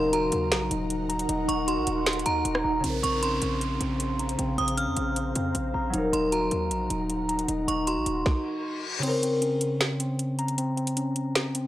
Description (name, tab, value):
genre	hip hop, trap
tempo	155 BPM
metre	4/4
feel	half-time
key	Bb minor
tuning	A4 = 439 Hz
part	metallic FM bell	second line	0.0-8.4 s	Bb5 to F6	-32 LUFS	right 2 dB	chorus, tape echo
part	concert harp	accompaniment	0.0-11.7 s	Db3 to Bb4	-30 LUFS	left 1 dB	low-pass filter
part	ethereal airy pad	sustained chords	0.0-8.2 s	Db3 to Bb5	-36 LUFS	right 2 dB	ensemble chorus, built-in reverb, low-pass filter
part	mellow tine electric piano	arpeggios	0.0-11.7 s	C4 to Bb5	-30 LUFS	left 1 dB	low-pass filter, tape echo
part	hard-hitting 808-style bass	bass	0.0-8.2 s	Eb1 to F2	-32 LUFS	equal	none
part	trap drum kit	drums	0.1-11.6 s	crash cymbal, finger snaps, hi-hat, kick drum, rim click, snare drum	-28 LUFS	equal	none
part	downlifter and reverse cymbal	sound effects	2.8-9.0 s	none	-37 LUFS	equal	none
room	light reverb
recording	dry, gritty hardware recording, transformer saturation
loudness	-24 LUFS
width	side -14 dB against mid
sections	0.0-2.8 A section; 2.8-9.0 B section; 9.0-11.7 C section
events	filter sweep 2.8-9.0; reverse cymbal 8.5-9.0; kick muted 9.0-11.7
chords	0.0 Ebm; 2.8 Bbmadd9; 5.9 Ebm; 9.0 Bbmadd9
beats	0.13 0.52 0.90 | 1.29 1.68 2.06 2.45 | 2.84 3.23 3.61 4.00 | 4.39 4.77 5.16 5.55 | 5.94 6.32 6.71 7.10 | 7.48 7.87 8.26 8.64 | 9.03 9.42 9.81 10.19 | 10.58 10.97 11.36